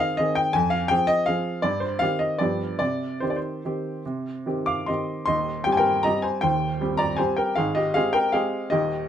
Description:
classical, piano waltz; 139-176 BPM; 3/4; rubato; C minor; A4 = 440 Hz
clear upright piano; solo; 0.0-9.1 s; Eb1 to D6; -22 LUFS; equal
moderate studio reverb, RT60 0.6 s; -22 LUFS; side -9 dB against mid
0.0-5.3 A section; 5.3-9.1 B section
0.0 Ab; 0.5 Fm; 1.6 Cm/G; 2.4 G7; 2.8 Cm; 5.3 Cm/Eb; 7.6 Abmaj7

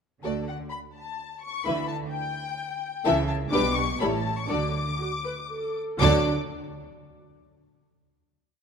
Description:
quick classical-period movement for string orchestra; 118-129 BPM; 3/4; rubato; D major; A4 = 444 Hz
rich studio violin section; second line; 0.2-6.3 s; G4 to E5; -29 LUFS; left 4 dB
warm studio viola section; accompaniment; 0.2-6.3 s; E3 to B4; -30 LUFS; right 2 dB
clear studio cello section; bass; 0.2-6.3 s; A2 to D3; -31 LUFS; right 3 dB
warm studio double bass section; bass; 0.2-6.3 s; A1 to D2; -32 LUFS; right 3 dB
warm studio violin section; melody; 0.5-6.3 s; F#5 to D6; -31 LUFS; left 6 dB
moderate concert hall reverb, RT60 2.1 s; close, detailed microphones; -24 LUFS; side -6 dB against mid
0.2-6.0 A section; 6.0-7.5 final chord
0.2 D; 1.6 Em7/D; 3.1 A/C#; 3.5 G/B; 4.0 A7; 4.5 D

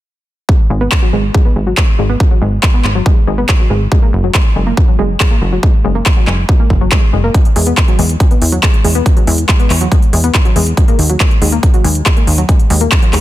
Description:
uplifting trance; 140 BPM; 4/4; straight; G# minor; A4 = 438 Hz
analog pluck; arpeggios; 0.5-13.2 s; F#3 to B3; -18 LUFS; left 2 dB; chorus, sidechain pumping, ping-pong delay
electronic kick drum; drums; 0.5-13.0 s; -10 LUFS; equal
plucky analog bass; bass; 0.7-13.2 s; F#1 to E2; -13 LUFS; equal; sidechain pumping
big-room dance drum kit; drums; 0.9-13.2 s; handclaps, hi-hat; -17 LUFS; equal
little or no reverb; dense, heavily limited modern master; -9 LUFS; side -15 dB against mid
0.5-13.2 A section
0.5 G#m; 3.9 F#; 7.3 E; 10.8 D#m

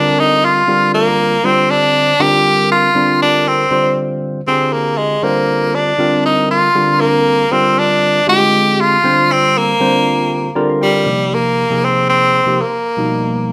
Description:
jazz; 79 BPM (dotted quarters); 6/8; straight; Bb mixolydian; A4 = 440 Hz
edgy tenor saxophone; melody; 0.0-13.5 s; G3 to G4; -15 LUFS; equal
barky tine electric piano; accompaniment; 0.0-13.5 s; B2 to G5; -19 LUFS; equal; phaser
moderate large studio reverb, RT60 0.9 s; -14 LUFS; mono
0.0-11.1 A section; 11.1-13.5 B section
tine electric piano fill 10.3-11.1
0.0 Bb9; 11.1 Bb13sus4; 12.6 G7alt

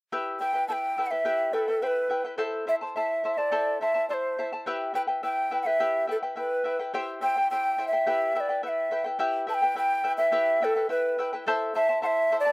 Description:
andean folk, Andean ensemble; 106 BPM; 2/4; straight; E minor; A4 = 440 Hz
charango; accompaniment; 0.1-12.5 s; E4 to A5; -30 LUFS; left 1 dB
breathy large quena; melody; 0.4-12.5 s; A4 to A5; -25 LUFS; equal; slapback echo
light reverb; recorded outdoors, with no room sound; -24 LUFS; side -24 dB against mid
0.1-9.2 A section; 9.2-12.5 A section
0.1 Em; 2.4 Am; 4.7 Em; 6.9 C; 8.1 Em; 11.5 Am

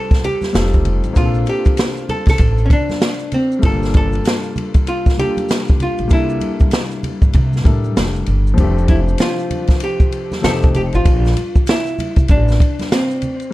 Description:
hip hop, jazz-hop; 97 BPM; 4/4; swing 61% on 16ths; F major; A4 = 440 Hz
archtop guitar, miked and amplified; melody; 0.0-13.5 s; C4 to A4; -21 LUFS; right 1 dB; analog delay
warm grand piano; accompaniment; 0.0-13.5 s; F3 to Bb4; -23 LUFS; left 4 dB
open jazz drum kit; drums; 0.1-13.5 s; hi-hat, kick drum, ride cymbal, snare drum; -15 LUFS; equal
maracas and congas; percussion; 0.1-13.5 s; -28 LUFS; right 2 dB
upright bass; bass; 0.5-12.6 s; F1 to C3; -17 LUFS; equal
light reverb; dark, warm production; -13 LUFS; side -17 dB against mid
0.0-8.6 A section; 8.6-13.5 B section
hollow-body jazz guitar solo 8.6-13.5
0.0 F6; 0.5 F7; 1.2 Bbmaj9; 3.6 Gm9; 6.1 C13; 8.6 F6; 10.4 F7; 11.1 Bbmaj9

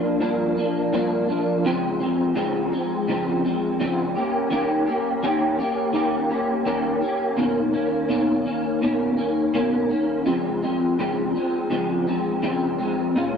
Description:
indie pop; 83 BPM; 4/4; straight; Db lydian; A4 = 438 Hz
electric guitar through a small old amp; solo; 0.0-13.4 s; G2 to G4; -20 LUFS; equal; ensemble chorus, vibrato effect
light reverb; dry, close 1970s-style studio recording; -20 LUFS; side -6 dB against mid
0.0-7.4 A section; 7.4-13.4 B section
0.0 Gm7; 1.6 Dbmaj7; 4.2 Eb7; 7.4 Cbmaj9; 10.3 Dbmaj7

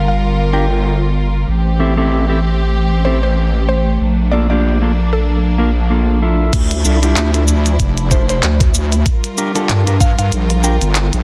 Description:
glitch hop; 95 BPM; 4/4; swing 56% on 16ths; D minor; A4 = 441 Hz
rich studio string section; sustained chords; 0.0-11.2 s; F3 to Bb4; -25 LUFS; equal; sidechain pumping
wobble bass; bass; 0.0-11.2 s; F1 to G2; -17 LUFS; equal; chorus, overdrive
woody wave-folded pluck; melody; 0.1-11.2 s; A4 to G5; -25 LUFS; equal; chorus, digital delay
mellow electric guitar; stabs; 0.5-10.8 s; Bb3 to Bb4; -22 LUFS; equal; sidechain pumping, digital delay
electronic kick drum; drums; 6.5-10.1 s; -17 LUFS; equal; small room reverb
glitchy drum kit; drums; 6.5-11.2 s; crash cymbal, handclaps, hi-hat, rim click, shaker; -22 LUFS; equal; low-pass filter on hats, small room reverb, low-pass filter on cymbals, low-pass filter on perc, low-pass filter on snare
light reverb; dense, heavily limited modern master; -15 LUFS; mono
0.0-6.5 A section; 6.5-11.2 B section
drop 6.5-11.2
0.0 Gm7; 1.5 Am7; 4.0 Bbmaj7; 6.5 Dmadd9; 9.1 Gm7

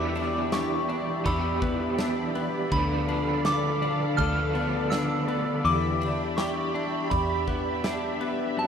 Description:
dream pop; 82 BPM; 4/4; straight; A4 = 440 Hz
soft synth bell; melody; 0.0-8.7 s; A5 to F6; -31 LUFS; equal; chorus, phaser, tape echo
overdriven semi-hollow guitar; accompaniment; 0.0-6.2 s; D3 to D5; -31 LUFS; right 2 dB; tremolo, analog chorus
string machine, violas; sustained chords; 0.0-8.7 s; F#4 to B5; -30 LUFS; right 1 dB; ensemble chorus
twelve-string electric guitar; arpeggios; 0.0-8.7 s; F#2 to A4; -30 LUFS; left 4 dB; analog chorus, tape echo
vintage muted fingered electric bass; bass; 0.0-8.5 s; D2 to E2; -33 LUFS; equal
huge arena drum kit; drums; 0.2-8.4 s; kick drum, ride cymbal, snare drum, tambourine; -35 LUFS; right 1 dB
glockenspiel with brass mallets; texture; 1.3-2.1 s; E6; -42 LUFS; right 1 dB; tape echo
moderate studio reverb, RT60 0.5 s; rough home demo mix; -24 LUFS; side -7 dB against mid
0.0-8.7 A section
0.0 Em7; 2.7 Dm6; 5.6 Em7

